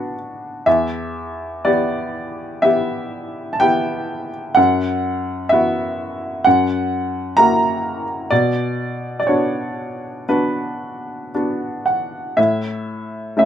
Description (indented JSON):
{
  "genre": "classical, lyrical solo piano",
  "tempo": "55-66 BPM",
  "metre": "4/4",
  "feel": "rubato",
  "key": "B minor",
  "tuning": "A4 = 440 Hz",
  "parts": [
    { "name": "bright upright piano", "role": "solo", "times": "0.0-13.5 s", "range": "E2 to A#5", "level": "-17 LUFS", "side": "equal", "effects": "none" }
  ],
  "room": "light reverb",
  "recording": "none",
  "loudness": "-17 LUFS",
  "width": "side -10 dB against mid",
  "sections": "0.0-12.4 A section; 12.4-13.5 B section",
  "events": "none",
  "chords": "0.0 Bm; 0.7 Em; 4.6 F#7sus4; 6.5 F#7; 8.3 Bm; 12.4 A5",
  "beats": "| 0.66 1.65 2.64 3.61 | 4.58 5.52 6.46 7.38 | 8.31 9.27 10.28 11.34 | 12.38 13.38"
}